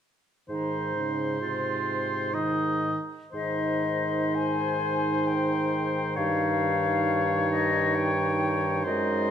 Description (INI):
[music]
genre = classical, slow romantic movement for wind quintet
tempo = 58-68 BPM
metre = 3/4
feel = rubato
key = Ab major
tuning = A4 = 441 Hz
[part]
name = clear oboe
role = second line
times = 0.5-9.3 s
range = C5 to Eb5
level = -30 LUFS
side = left 3 dB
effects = none
[part]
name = bright clarinet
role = accompaniment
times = 0.5-9.3 s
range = Eb4 to F4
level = -32 LUFS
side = right 6 dB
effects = none
[part]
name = warm French horn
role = accompaniment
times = 0.5-9.3 s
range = C3 to Ab3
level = -33 LUFS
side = equal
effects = none
[part]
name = dark bassoon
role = bass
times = 0.5-9.3 s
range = Gb2 to Ab2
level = -30 LUFS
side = right 3 dB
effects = none
[part]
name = silver concert flute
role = melody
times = 3.3-9.3 s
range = Eb5 to Ab5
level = -29 LUFS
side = left 7 dB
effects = none
[sound]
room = wet recital hall reverb, RT60 1.4 s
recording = none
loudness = -24 LUFS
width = side -8 dB against mid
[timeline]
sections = 0.5-3.3 A section; 3.3-9.3 B section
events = none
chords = 0.5 Ab; 6.2 Eb7/G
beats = | 0.49 1.41 2.35 | 3.34 4.35 5.28 | 6.18 7.08 7.96 | 8.87